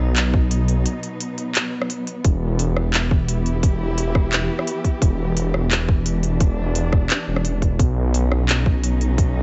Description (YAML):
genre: half-time drum and bass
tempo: 173 BPM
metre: 4/4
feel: half-time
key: unclear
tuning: A4 = 440 Hz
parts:
  - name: dark symphonic cello section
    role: sustained chords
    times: 0.0-9.4 s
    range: B2 to G4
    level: -29 LUFS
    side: equal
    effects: vintage 12-bit sampler grit, sidechain pumping
  - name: dark detuned saw bass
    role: bass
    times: 0.0-9.4 s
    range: E1 to B1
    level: -23 LUFS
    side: equal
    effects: none
  - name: drum and bass drum kit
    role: drums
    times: 0.2-9.3 s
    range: handclaps, hi-hat, rim click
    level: -26 LUFS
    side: equal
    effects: none
  - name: electronic kick drum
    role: drums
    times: 0.3-9.3 s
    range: none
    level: -20 LUFS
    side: equal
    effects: none
room: little or no reverb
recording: nothing above 7.9 kHz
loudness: -20 LUFS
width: mono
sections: 0.0-9.4 A section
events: break 0.9-2.2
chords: 0.0 B; 2.2 Em; 7.8 B